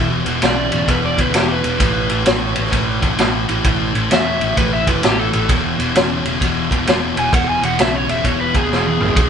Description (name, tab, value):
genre	blues rock power trio and southern rock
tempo	130 BPM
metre	4/4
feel	swing 65% on 8ths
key	E mixolydian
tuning	A4 = 440 Hz
part	overdriven slide guitar	melody	0.0-9.3 s	G4 to G#5	-21 LUFS	equal	none
part	thick fuzz guitar	riff	0.0-9.3 s	E2 to F#3	-19 LUFS	equal	distortion
part	fingered electric bass	bass	0.0-9.3 s	E1 to E2	-24 LUFS	equal	none
part	vintage drum kit	drums	0.3-9.3 s	kick drum, ride cymbal, snare drum, toms	-17 LUFS	equal	none
room	moderate small room reverb, RT60 0.5 s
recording	band playing live in one room, nothing above 11.0 kHz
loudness	-14 LUFS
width	side -7 dB against mid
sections	0.0-9.3 A section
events	electric slide guitar solo 0.0-9.3; drum fill 8.7-9.2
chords	0.0 E5; 1.8 A5; 5.5 E